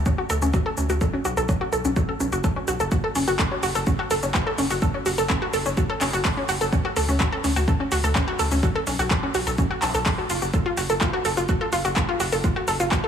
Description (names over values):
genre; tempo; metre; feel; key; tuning
melodic techno; 126 BPM; 4/4; straight; unclear; A4 = 440 Hz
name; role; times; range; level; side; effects
tight sequencer bass; bass; 0.0-13.0 s; F#1 to D2; -27 LUFS; equal; sidechain pumping
analog pluck; arpeggios; 0.1-13.1 s; C#4 to A5; -24 LUFS; equal; chorus, sidechain pumping, tape echo
deep house drum kit; drums; 0.1-13.0 s; handclaps, hi-hat, shaker; -28 LUFS; left 1 dB; overdrive
electronic kick drum; drums; 0.1-13.0 s; none; -25 LUFS; equal; overdrive
room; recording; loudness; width
light reverb, digital ambience; small room ambience; -20 LUFS; side -8 dB against mid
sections
0.0-13.1 A section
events
filter sweep on synth arpeggio sound 0.0-13.1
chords
0.0 D; 1.0 B5; 2.9 F#5; 6.7 D; 8.6 B5; 10.5 N.C.